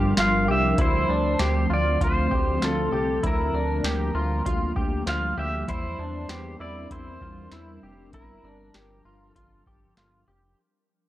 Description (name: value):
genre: dream pop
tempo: 98 BPM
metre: 4/4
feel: straight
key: G dorian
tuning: A4 = 441 Hz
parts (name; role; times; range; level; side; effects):
- pedal steel guitar; melody; 0.0-9.9 s; A4 to F5; -28 LUFS; equal; tape echo
- ethereal airy pad; sustained chords; 0.0-10.6 s; D3 to Bb4; -30 LUFS; equal; ensemble chorus, built-in reverb
- clean electric guitar; arpeggios; 0.0-10.6 s; D4 to G4; -31 LUFS; left 1 dB; analog chorus, tape echo
- chorused synth bass; bass; 0.0-10.5 s; F1 to E2; -28 LUFS; equal; tube saturation
- booming analog drum machine; drums; 0.2-10.1 s; hi-hat, kick drum, snare drum; -27 LUFS; equal; none
room: digital ambience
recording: dry, gritty hardware recording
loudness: -22 LUFS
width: side -14 dB against mid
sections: 0.0-10.6 A section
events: fade-out 0.0-10.6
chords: 0.0 Gm7; 0.8 Dm7; 3.2 Gm7/D; 5.7 C7/E; 8.1 Gm7